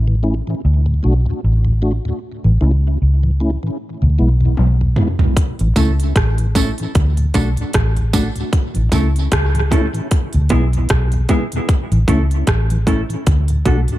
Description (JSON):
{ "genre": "dub reggae", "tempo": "76 BPM", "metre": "4/4", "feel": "swing 57% on 16ths", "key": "A major", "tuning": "A4 = 438 Hz", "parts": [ { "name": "vintage muted fingered electric bass", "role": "bass", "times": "0.0-13.9 s", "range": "A1 to D2", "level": "-15 LUFS", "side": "equal", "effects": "none" }, { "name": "mellow tonewheel organ", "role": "accompaniment", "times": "0.1-14.0 s", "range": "D2 to F#4", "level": "-22 LUFS", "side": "left 1 dB", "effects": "chorus vibrato, stopped rotary speaker, tape echo" }, { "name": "organic electronic drum kit", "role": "drums", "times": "4.6-14.0 s", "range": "hi-hat, kick drum, rim click, toms", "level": "-18 LUFS", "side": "equal", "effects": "overdrive" }, { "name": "mellow electric guitar", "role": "accompaniment", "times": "5.8-13.8 s", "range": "G#3 to A4", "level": "-22 LUFS", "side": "right 1 dB", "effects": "tape echo" }, { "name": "tambourine", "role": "percussion", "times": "5.8-9.1 s", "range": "none", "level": "-30 LUFS", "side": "right 8 dB", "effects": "tape echo" } ], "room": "little or no reverb", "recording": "none", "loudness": "-14 LUFS", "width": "side -15 dB against mid", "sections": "0.0-14.0 A section", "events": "break 0.0-5.4; drum fill 4.6-5.4; part muted 8.5-14.0", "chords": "0.0 A; 0.6 D; 2.2 A; 3.8 E; 5.4 A; 6.9 D; 8.5 A; 10.1 E; 11.7 A; 13.3 D", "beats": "0.64 1.43 | 2.21 3.00 3.79 4.58 | 5.37 6.16 6.95 7.74 | 8.53 9.31 10.10 10.89 | 11.68 12.47 13.26" }